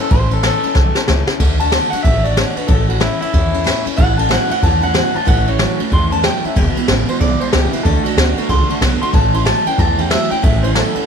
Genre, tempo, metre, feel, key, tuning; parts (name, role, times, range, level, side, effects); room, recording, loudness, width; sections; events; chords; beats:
rockabilly; 186 BPM; 4/4; swing 63% on 8ths; A major; A4 = 440 Hz
electric guitar through a small old amp; melody; 0.0-11.1 s; E4 to C6; -20 LUFS; equal; tape echo
picked steel-string acoustic guitar; accompaniment; 0.0-11.1 s; E2 to F#4; -23 LUFS; left 13 dB
upright bass; bass; 0.1-11.0 s; E1 to E2; -17 LUFS; equal
jazz brush drum kit; drums; 0.1-11.0 s; kick drum, ride cymbal, snare drum; -16 LUFS; equal
electric guitar through a small old amp; riff; 4.0-11.1 s; E2 to B3; -22 LUFS; right 15 dB; analog chorus
studio reverb; 1960s-style stereo with parts hard left and right; -12 LUFS; side -7 dB against mid
0.0-11.1 A section
clean electric guitar solo 0.0-11.1; drum fill 0.8-1.4
0.0 A; 1.4 D; 2.7 A; 6.6 E; 7.8 D; 9.1 A
| 0.11 0.43 0.76 1.08 | 1.40 1.72 2.05 2.37 | 2.69 3.01 3.34 3.66 | 3.98 4.30 4.63 4.95 | 5.27 5.59 5.92 6.24 | 6.56 6.88 7.21 7.53 | 7.85 8.17 8.49 8.82 | 9.14 9.46 9.78 10.10 | 10.43 10.75